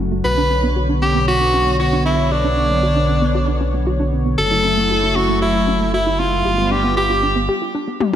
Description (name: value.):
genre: synthwave.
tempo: 116 BPM.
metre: 4/4.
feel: straight.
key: B minor.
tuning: A4 = 440 Hz.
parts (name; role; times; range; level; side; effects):
warm analog pad; sustained chords; 0.0-7.5 s; D3 to C#5; -21 LUFS; equal; chorus.
warbly dusty pluck; arpeggios; 0.0-8.2 s; A3 to G4; -24 LUFS; right 1 dB; chorus, cassette tape, digital delay.
wide detuned saw bass; bass; 0.0-7.5 s; F#1 to B1; -21 LUFS; equal; chorus.
bright tenor saxophone; melody; 0.2-7.5 s; D4 to B4; -18 LUFS; equal; digital delay.
electronic toms; drums; 8.0-8.2 s; none; -16 LUFS; left 7 dB; studio reverb.
room: moderate lush hall reverb, RT60 2.1 s.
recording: bright 1980s-style digital production.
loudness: -15 LUFS.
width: side -10 dB against mid.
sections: 0.0-8.2 A section.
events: filter sweep on synth arpeggio sound 0.0-8.2; break 7.5-8.2; drum fill 8.0.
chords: 0.2 Bmadd9; 4.4 F#m7; 6.5 G7.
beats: | 0.25 0.76 1.28 1.80 | 2.31 2.83 3.35 3.87 | 4.38 4.90 5.42 5.94 | 6.45 6.97 7.49 8.01.